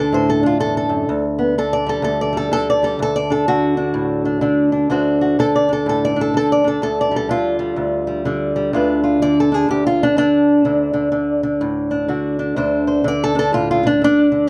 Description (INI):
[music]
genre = acoustic country blues, solo or duo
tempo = 125 BPM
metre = 4/4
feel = swing 62% on 8ths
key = unclear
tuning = A4 = 436 Hz
[part]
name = fingerpicked old ladder-braced acoustic guitar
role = solo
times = 0.0-14.5 s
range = D2 to D5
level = -17 LUFS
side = equal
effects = none
[sound]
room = moderate studio reverb, RT60 0.6 s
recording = close, detailed microphones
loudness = -18 LUFS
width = mono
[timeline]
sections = 0.0-14.5 A section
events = steel-string acoustic guitar solo 0.0-14.5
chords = 0.0 D; 1.1 G5; 3.0 D7; 6.8 G7; 10.7 D7